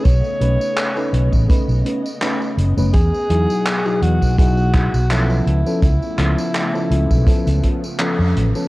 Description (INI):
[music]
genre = vaporwave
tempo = 83 BPM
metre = 4/4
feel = swing 54% on 16ths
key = E major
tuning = A4 = 440 Hz
[part]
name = clear alto saxophone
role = melody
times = 0.0-8.0 s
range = E4 to C#5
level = -24 LUFS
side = equal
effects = tape echo
[part]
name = mellow FM electric piano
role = accompaniment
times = 0.0-8.7 s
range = F3 to B4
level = -22 LUFS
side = left 1 dB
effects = lush chorus, tape echo
[part]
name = soft string machine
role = sustained chords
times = 0.0-8.7 s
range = B2 to F#5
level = -29 LUFS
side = equal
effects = phaser, ensemble chorus
[part]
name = vintage drum kit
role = drums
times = 0.0-8.7 s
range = handclaps, hi-hat, tambourine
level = -25 LUFS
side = equal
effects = none
[part]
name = fretless electric bass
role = bass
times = 0.1-8.5 s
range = F#1 to E#2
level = -17 LUFS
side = equal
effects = tube saturation
[part]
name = kick drum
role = drums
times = 0.1-7.8 s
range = none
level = -16 LUFS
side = equal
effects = none
[sound]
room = studio ambience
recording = worn, warbling old tape, cassette tape, warbly pitch drift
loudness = -15 LUFS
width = side -19 dB against mid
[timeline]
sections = 0.0-8.7 A section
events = kick drops out 8.0-8.7; band accent 8.0-8.4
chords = 0.0 B9; 2.9 Emaj9; 5.5 C#7alt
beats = | 0.05 0.77 1.49 2.21 | 2.94 3.66 4.38 5.11 | 5.83 6.55 7.28 8.00